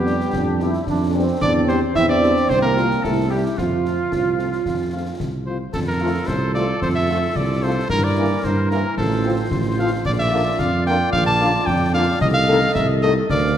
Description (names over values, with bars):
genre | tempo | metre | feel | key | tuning
military-style march for wind band | 111 BPM | 2/4 | straight | F major | A4 = 441 Hz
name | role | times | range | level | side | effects
warm cornet | melody | 0.0-13.6 s | F4 to A5 | -23 LUFS | equal | none
mellow euphonium | second line | 0.0-5.2 s | F3 to E4 | -24 LUFS | right 2 dB | none
warm woodwind section | second line | 0.0-13.6 s | E4 to F5 | -26 LUFS | equal | none
warm trombone section | sustained chords | 0.0-13.1 s | D3 to F4 | -27 LUFS | right 2 dB | none
dark tuba | bass | 0.0-13.6 s | A1 to G2 | -21 LUFS | right 2 dB | none
mellow French horn section | accompaniment | 0.1-13.1 s | G3 to A4 | -27 LUFS | left 6 dB | none
concert snare drum, concert bass drum and clash cymbals | drums | 0.1-13.6 s | none | -28 LUFS | left 2 dB | none
room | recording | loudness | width
wet scoring stage reverb, RT60 1.6 s | none | -17 LUFS | side -10 dB against mid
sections
0.0-5.7 A section; 5.7-13.6 B section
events
none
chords
0.0 G7/F; 1.4 C/E; 2.5 F/C; 3.0 C; 3.6 F; 7.9 Edim/G; 9.0 F/A; 10.1 Bb; 12.2 Adim/C